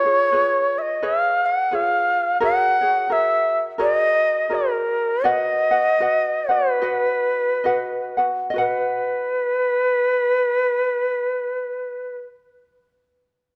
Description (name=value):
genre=Hawaiian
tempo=66-87 BPM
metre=4/4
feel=swing 60% on 8ths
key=B major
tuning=A4 = 439 Hz
part: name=reedy shakuhachi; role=melody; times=0.0-12.2 s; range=A#4 to F#5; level=-21 LUFS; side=equal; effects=none
part: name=ukulele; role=accompaniment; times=0.0-12.2 s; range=E#4 to F#5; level=-27 LUFS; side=equal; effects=none
room=light reverb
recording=dark, warm production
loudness=-20 LUFS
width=mono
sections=0.0-8.5 A section; 8.5-12.2 B section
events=slowing down 2.4-8.5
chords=0.0 C#7; 2.4 F#add9; 5.3 B